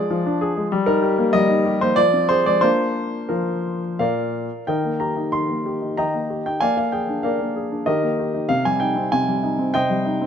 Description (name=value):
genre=classical-period piano sonatina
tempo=84-98 BPM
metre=3/4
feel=rubato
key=Eb major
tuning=A4 = 438 Hz
part: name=clear baby grand piano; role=solo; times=0.0-10.3 s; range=Bb2 to C6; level=-18 LUFS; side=equal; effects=none
room=moderate recital hall reverb, RT60 1.7 s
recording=close, detailed microphones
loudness=-18 LUFS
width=side -8 dB against mid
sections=0.0-4.7 A section; 4.7-10.3 B section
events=none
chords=0.0 Ddim/F; 0.7 Eb/G; 2.0 Fm; 2.6 Bb; 4.7 Eb; 6.6 Bb7; 7.9 Eb; 8.5 Cm